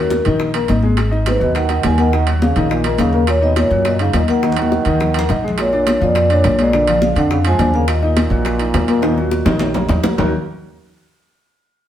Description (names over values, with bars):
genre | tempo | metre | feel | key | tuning
Afro-Cuban jazz | 208 BPM | 4/4 | straight | Eb minor | A4 = 445 Hz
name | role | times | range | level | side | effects
vibraphone with soft mallets | melody | 0.0-9.9 s | Bb4 to Ab5 | -20 LUFS | equal | none
clear trombone | second line | 0.0-9.9 s | Gb2 to F3 | -22 LUFS | right 2 dB | none
clear grand piano | accompaniment | 0.0-10.3 s | D3 to Eb5 | -21 LUFS | left 3 dB | none
upright bass | bass | 0.0-10.3 s | Ab1 to Gb2 | -18 LUFS | right 1 dB | none
bongos | percussion | 0.1-10.3 s | none | -25 LUFS | left 3 dB | none
congas | percussion | 0.1-10.3 s | none | -22 LUFS | left 2 dB | none
timbales | percussion | 0.3-10.2 s | none | -25 LUFS | right 5 dB | none
room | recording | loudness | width
wet studio reverb, RT60 1.0 s | heard from further back in the room | -13 LUFS | side -11 dB against mid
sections
0.0-10.2 A section; 10.2-11.3 B section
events
drum fill 4.4-5.6, 9.0-10.2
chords
0.0 Ab5; 2.1 Ebm7; 5.6 Bb7#9; 7.9 Ebm; 10.2 Ebm7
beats
0.11 0.40 0.69 | 0.98 1.26 1.55 1.84 | 2.13 2.41 2.70 2.99 | 3.28 3.56 3.85 4.14 | 4.43 4.71 5.00 5.29 | 5.58 5.87 6.15 6.44 | 6.73 7.02 7.30 7.59 | 7.88 8.17 8.46 8.74 | 9.03 9.32 9.61 9.89 | 10.18